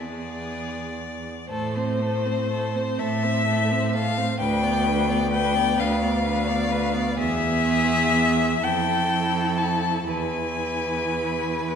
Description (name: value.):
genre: classical, slow romantic movement for string quartet.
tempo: 42 BPM (dotted quarters).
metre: 6/8.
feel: uneven beats, rubato.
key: A minor.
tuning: A4 = 438 Hz.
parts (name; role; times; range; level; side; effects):
rich violin; melody; 0.0-11.8 s; C5 to A5; -25 LUFS; left 4 dB; none.
rich violin; second line; 0.0-11.8 s; G#4 to D5; -30 LUFS; left 1 dB; none.
warm viola; accompaniment; 0.0-11.8 s; A3 to E4; -29 LUFS; right 3 dB; none.
clear cello; bass; 0.0-11.8 s; D2 to A2; -26 LUFS; right 2 dB; none.
room: wet concert hall reverb, RT60 2.1 s.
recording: heard from further back in the room.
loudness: -21 LUFS.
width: side -7 dB against mid.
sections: 0.0-1.5 A section; 1.5-11.8 B section.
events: none.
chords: 0.0 E; 1.5 Am; 4.4 Bdim/D; 7.2 E; 8.6 Fmaj7; 10.1 E.